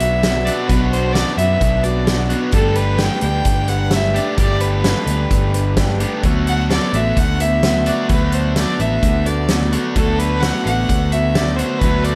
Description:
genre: folk rock and heartland rock.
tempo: 129 BPM.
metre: 4/4.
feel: straight.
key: D major.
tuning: A4 = 440 Hz.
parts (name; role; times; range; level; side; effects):
clear fiddle; melody; 0.0-12.2 s; A4 to G5; -24 LUFS; equal; none.
picked steel-string acoustic guitar; accompaniment; 0.0-12.2 s; B2 to B4; -25 LUFS; equal; none.
raw garage guitar; riff; 0.0-12.2 s; G2 to G4; -27 LUFS; equal; overdrive.
fingered electric bass; bass; 0.0-12.2 s; G1 to F#2; -22 LUFS; equal; none.
loose indie drum kit; drums; 0.0-12.2 s; hi-hat, kick drum, snare drum; -22 LUFS; equal; none.
room: light reverb.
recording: none.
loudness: -17 LUFS.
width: mono.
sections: 0.0-12.2 A section.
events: none.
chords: 0.0 Bm; 2.5 Gadd9; 6.2 D6.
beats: 0.22 | 0.68 1.14 1.61 2.07 | 2.53 2.99 3.46 3.92 | 4.38 4.84 5.31 5.77 | 6.24 6.70 7.17 7.63 | 8.09 8.56 9.02 9.49 | 9.95 10.42 10.88 11.35 | 11.81.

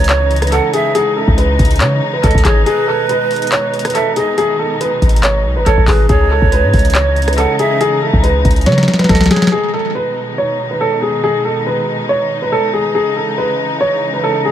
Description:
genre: hip hop, trap.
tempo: 140 BPM.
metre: 4/4.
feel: half-time.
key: G# phrygian.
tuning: A4 = 442 Hz.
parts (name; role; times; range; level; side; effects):
dark grand piano; melody; 0.0-14.5 s; G#4 to C#5; -16 LUFS; equal; low-pass filter, analog delay.
breathy bright large pan pipes; second line; 0.0-9.5 s; B4 to F#5; -20 LUFS; right 8 dB; analog delay.
warm symphonic string section; sustained chords; 0.0-14.5 s; B2 to D#4; -20 LUFS; left 2 dB; none.
warm 808-style bass; bass; 0.0-9.3 s; G#1 to C#3; -14 LUFS; equal; none.
booming analog drum machine; drums; 0.0-9.6 s; handclaps, hi-hat, kick drum, rim click, snare drum; -15 LUFS; left 1 dB; analog delay.
room: light reverb, small room ambience.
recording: echo-heavy mix.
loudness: -11 LUFS.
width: side -11 dB against mid.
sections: 0.0-9.5 A section; 9.5-14.5 A section.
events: break 2.7-3.5; drum fill 8.7-9.5.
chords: 0.0 C#madd9; 2.7 G#m; 6.1 C#madd9; 9.5 G#m; 12.9 C#madd9.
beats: 0.09 0.52 | 0.95 1.38 1.81 2.23 | 2.66 3.09 3.52 3.95 | 4.38 4.81 5.24 5.66 | 6.09 6.52 6.95 7.38 | 7.81 8.23 8.66 9.09 | 9.52 9.95 10.38 10.81 | 11.23 11.66 12.09 12.52 | 12.95 13.38 13.81 14.23.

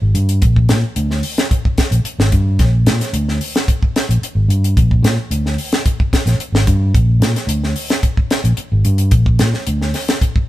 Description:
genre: afrobeat.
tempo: 110 BPM.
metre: 4/4.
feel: straight.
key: Bb mixolydian.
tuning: A4 = 437 Hz.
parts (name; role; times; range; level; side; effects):
fingered electric bass; bass; 0.0-9.9 s; Ab1 to Bb2; -14 LUFS; equal; none.
tight funk drum kit; drums; 0.1-10.5 s; hi-hat, kick drum, snare drum; -16 LUFS; equal; none.
room: light reverb.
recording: band playing live in one room.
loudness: -13 LUFS.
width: side -15 dB against mid.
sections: 0.0-10.5 A section.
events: none.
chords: none.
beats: | 0.42 0.97 1.51 2.06 | 2.60 3.14 3.68 4.23 | 4.77 5.31 5.86 6.40 | 6.95 7.49 8.03 8.58 | 9.12 9.67 10.21.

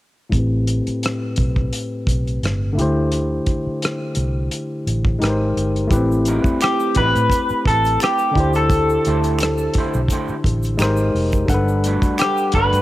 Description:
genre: R&B, neo-soul.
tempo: 86 BPM.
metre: 4/4.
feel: swing 54% on 16ths.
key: unclear.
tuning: A4 = 441 Hz.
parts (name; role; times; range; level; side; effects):
barky tine electric piano; accompaniment; 0.3-12.8 s; A2 to F#5; -22 LUFS; left 1 dB; low-pass filter, cassette tape.
vintage muted fingered electric bass; bass; 0.3-12.8 s; F1 to A2; -21 LUFS; equal; none.
damped 70s drum kit; drums; 0.3-12.8 s; hi-hat, kick drum, rim click; -22 LUFS; equal; cassette tape.
tube shaker and finger snaps; percussion; 5.9-12.8 s; none; -35 LUFS; right 4 dB; none.
electric guitar through a small old amp; second line; 6.3-12.8 s; G3 to C5; -28 LUFS; right 3 dB; cassette tape.
electric guitar through a small old amp; melody; 6.6-12.8 s; G4 to B4; -19 LUFS; equal; lush chorus, cassette tape.
room: light reverb, studio reverb.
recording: home recording on cassette.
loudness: -16 LUFS.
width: side -15 dB against mid.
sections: 0.3-5.9 A section; 5.9-12.8 B section.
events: filter sweep on tine electric piano 0.3-5.9.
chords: 0.3 Am9; 2.8 D9sus4; 5.2 Abmaj9; 5.9 Am9; 8.3 D9sus4; 10.8 Abmaj9; 11.5 Gmaj9.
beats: | 0.33 1.02 1.72 2.42 | 3.12 3.81 4.51 5.21 | 5.91 6.60 7.30 8.00 | 8.70 9.39 10.09 10.79 | 11.49 12.19.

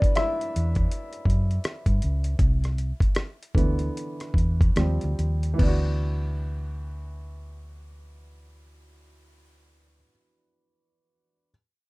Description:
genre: R&B, neo-soul.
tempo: 70-83 BPM.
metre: 4/4.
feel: swing 61% on 16ths.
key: D mixolydian.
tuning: A4 = 439 Hz.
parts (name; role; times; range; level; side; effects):
clear upright piano; accompaniment; 0.0-11.5 s; D3 to E5; -31 LUFS; equal; none.
hollow-body short-scale fingered electric bass; bass; 0.0-10.0 s; C2 to G2; -26 LUFS; equal; none.
dusty soul sampler-style drum kit; drums; 0.0-5.8 s; crash cymbal, hi-hat, kick drum, rim click; -23 LUFS; equal; none.
room: little or no reverb.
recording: rough home demo mix.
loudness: -22 LUFS.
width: side -24 dB against mid.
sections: 0.0-5.6 A section; 5.6-9.0 B section.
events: slowing down 0.0-5.6; upright piano solo 0.0-5.6.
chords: 0.0 D69; 2.4 Cmaj7; 4.8 Eb69; 5.6 D69.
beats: 0.16 0.89 1.63 | 2.39 3.16 3.94 4.75 | 5.59 6.44 7.29 8.14.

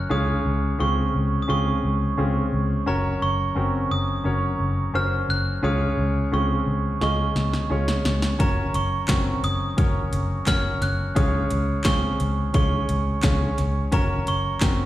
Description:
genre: piano-driven pop.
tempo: 87 BPM.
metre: 4/4.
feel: straight.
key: Db major.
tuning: A4 = 440 Hz.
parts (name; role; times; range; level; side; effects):
glockenspiel with hard plastic mallets; melody; 0.0-14.9 s; Bb5 to Gb6; -28 LUFS; right 3 dB; slapback echo.
clear concert grand piano; accompaniment; 0.0-14.9 s; Db3 to Eb5; -27 LUFS; left 1 dB; slapback echo.
vintage muted fingered electric bass; bass; 0.0-14.9 s; Gb1 to Db2; -24 LUFS; equal; none.
deep house drum kit; drums; 7.0-14.8 s; handclaps, hi-hat, kick drum, snare drum; -23 LUFS; equal; overdrive.
room: light reverb.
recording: live gig heard through the venue's PA, recital hall reverb.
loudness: -20 LUFS.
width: side -14 dB against mid.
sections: 0.0-14.9 A section.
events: drum fill 7.0-8.4.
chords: 0.1 Db; 2.9 Gb; 5.6 Db; 8.4 Gb; 11.2 Db; 13.9 Gb.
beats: | 0.11 0.80 1.49 2.18 | 2.87 3.56 4.25 4.95 | 5.64 6.33 7.02 7.71 | 8.40 9.09 9.78 10.47 | 11.16 11.86 12.55 13.24 | 13.93 14.62.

